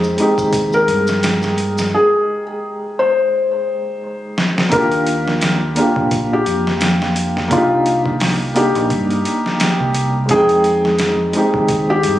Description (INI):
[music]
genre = trip hop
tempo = 86 BPM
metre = 4/4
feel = swing 57% on 16ths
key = unclear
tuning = A4 = 441 Hz
[part]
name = dark upright piano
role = accompaniment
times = 0.0-12.2 s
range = Ab3 to G5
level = -18 LUFS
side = right 1 dB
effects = tremolo, vintage 12-bit sampler grit, tape echo
[part]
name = deep dub fingered electric bass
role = bass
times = 0.0-12.2 s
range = Bb1 to G2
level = -22 LUFS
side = equal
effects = none
[part]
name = maracas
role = percussion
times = 0.0-1.9 s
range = none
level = -32 LUFS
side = right 1 dB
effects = none
[part]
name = boom bap sampler-style drum kit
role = drums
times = 0.2-12.2 s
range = hi-hat, kick drum, snare drum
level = -20 LUFS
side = equal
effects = overdrive
[part]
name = felt-muted upright piano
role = melody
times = 0.7-12.2 s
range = F4 to C5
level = -18 LUFS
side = left 2 dB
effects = tape echo
[sound]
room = light reverb, small room ambience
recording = recorded on a phone in the room, studio reverb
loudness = -14 LUFS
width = side -13 dB against mid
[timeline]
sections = 0.0-4.7 A section; 4.7-12.2 B section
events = drum fill 4.4-4.7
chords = 0.0 Fm7 (rootless); 4.7 Ebmaj7; 7.5 Cm7; 10.3 Fm7